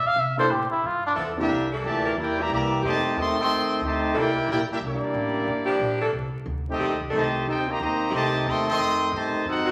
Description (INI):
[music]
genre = jazz, big band swing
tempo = 181 BPM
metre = 4/4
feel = swing 64% on 8ths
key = unclear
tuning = A4 = 439 Hz
[part]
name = trumpet with cup mute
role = melody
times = 0.0-1.1 s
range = D4 to F5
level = -25 LUFS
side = equal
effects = none
[part]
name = upright bass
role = bass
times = 0.0-9.7 s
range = G1 to C3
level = -35 LUFS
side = equal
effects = none
[part]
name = warm grand piano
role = accompaniment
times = 0.4-1.5 s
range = C3 to A4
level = -33 LUFS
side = equal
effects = none
[part]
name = warm saxophone section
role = sustained chords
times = 0.4-9.7 s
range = Eb3 to Bb4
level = -31 LUFS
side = equal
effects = none
[part]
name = clear trumpet section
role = melody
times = 1.4-9.7 s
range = Bb3 to C6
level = -28 LUFS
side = equal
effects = none
[part]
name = warm trombone section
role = second line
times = 1.4-9.7 s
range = Bb2 to G4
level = -29 LUFS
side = equal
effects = none
[sound]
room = wet large studio reverb, RT60 1.3 s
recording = vinyl crackle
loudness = -25 LUFS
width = mono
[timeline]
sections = 0.0-1.5 A section; 1.5-9.7 B section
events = muted trumpet solo 0.0-1.5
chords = 0.2 C13; 0.8 G13; 1.5 C13; 2.8 F13; 4.1 C13; 5.5 Gm7; 6.1 Csus2; 6.8 F13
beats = | 0.17 0.50 0.83 1.17 | 1.50 1.83 2.16 2.49 | 2.82 3.15 3.48 3.81 | 4.15 4.48 4.81 5.14 | 5.47 5.80 6.13 6.46 | 6.80 7.13 7.46 7.79 | 8.12 8.45 8.78 9.11 | 9.45